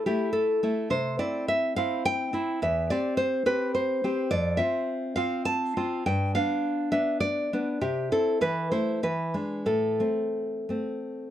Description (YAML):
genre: romantic piece for solo classical guitar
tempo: 88-108 BPM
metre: 3/4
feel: rubato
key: unclear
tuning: A4 = 440 Hz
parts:
  - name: nylon-string guitar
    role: solo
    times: 0.0-11.3 s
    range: E2 to A5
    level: -25 LUFS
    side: equal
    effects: none
room: light reverb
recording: dark, warm production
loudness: -25 LUFS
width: side -11 dB against mid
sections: 0.0-11.3 A section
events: none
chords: 0.0 A5; 0.9 C; 2.6 C/E; 4.3 F; 6.1 G; 7.8 C; 8.4 Am/E; 9.0 E7; 9.7 Am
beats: 0.32 | 0.89 1.47 2.04 | 2.62 3.18 3.76 | 4.32 4.88 5.47 | 6.06 6.62 7.22 | 7.82 8.43 9.03 | 9.69 10.36 11.04